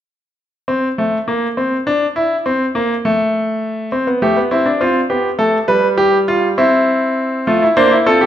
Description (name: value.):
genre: classical, baroque-style 4-part fugue for grand piano.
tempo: 68 BPM (dotted quarters).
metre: 6/8.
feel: straight.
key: unclear.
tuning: A4 = 440 Hz.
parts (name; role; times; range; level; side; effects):
bright concert grand piano; solo; 0.7-8.3 s; G3 to C5; -13 LUFS; equal; none.
room: wet recital hall reverb, RT60 1.4 s.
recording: minimal, uncompressed stereo recording.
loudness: -13 LUFS.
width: side -10 dB against mid.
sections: 0.4-8.3 A section.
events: none.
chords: 0.4 N.C.; 3.9 C; 4.8 Am9; 5.7 G7; 6.6 C; 7.5 F/A.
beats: | 0.38 1.27 | 2.16 3.04 | 3.92 4.81 | 5.69 6.58 | 7.48.